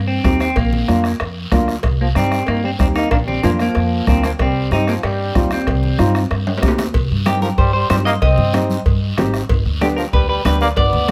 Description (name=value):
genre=latin, cumbia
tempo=188 BPM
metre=4/4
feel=straight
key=C minor, C harmonic minor from 6.9 s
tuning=A4 = 440 Hz
part: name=upright bass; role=bass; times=0.0-11.1 s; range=G1 to G2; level=-22 LUFS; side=equal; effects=none
part: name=clean electric guitar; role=melody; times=0.1-11.1 s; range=Bb3 to Eb5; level=-23 LUFS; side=equal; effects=spring reverb
part: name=bombo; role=percussion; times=0.2-11.1 s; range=none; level=-22 LUFS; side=equal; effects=none
part: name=congas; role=percussion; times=0.2-11.1 s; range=none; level=-28 LUFS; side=equal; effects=none
part: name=guiro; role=percussion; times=0.2-11.1 s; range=none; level=-35 LUFS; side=equal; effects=none
part: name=timbales and cowbell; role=percussion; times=0.2-11.1 s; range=none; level=-30 LUFS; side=equal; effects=none
part: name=flamenco guitar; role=accompaniment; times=0.3-11.1 s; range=Bb3 to G4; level=-23 LUFS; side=equal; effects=none
part: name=bright trombone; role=second line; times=2.0-11.1 s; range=D3 to C4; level=-26 LUFS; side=equal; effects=none
room=little or no reverb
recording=close, detailed microphones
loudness=-17 LUFS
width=mono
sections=0.0-6.9 A section; 6.9-11.1 B section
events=drum fill 6.5-6.9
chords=0.0 Cm; 0.6 Bb; 1.8 Cm; 3.1 Bb; 4.4 Cm; 9.5 G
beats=0.24 | 0.56 0.88 1.20 1.52 | 1.84 2.16 2.48 2.80 | 3.12 3.44 3.76 4.08 | 4.40 4.72 5.04 5.35 | 5.67 5.99 6.31 6.63 | 6.95 7.27 7.59 7.91 | 8.22 8.54 8.86 9.18 | 9.50 9.82 10.14 10.45 | 10.77 11.09